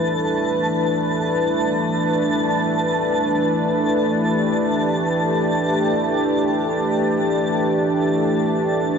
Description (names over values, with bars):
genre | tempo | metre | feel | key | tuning
ambient | free time | none | none | E minor | A4 = 442 Hz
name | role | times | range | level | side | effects
warm analog pad | sustained chords | 0.0-9.0 s | E3 to B4 | -18 LUFS | equal | chorus
twinkling granular texture | texture | 0.0-9.0 s | A5 to A6 | -25 LUFS | right 1 dB | built-in reverb
room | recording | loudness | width
wet lush hall reverb, RT60 2.7 s | worn, warbling old tape, cassette tape, warbly pitch drift | -18 LUFS | side -6 dB against mid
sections
0.0-9.0 A section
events
none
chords
0.0 Em11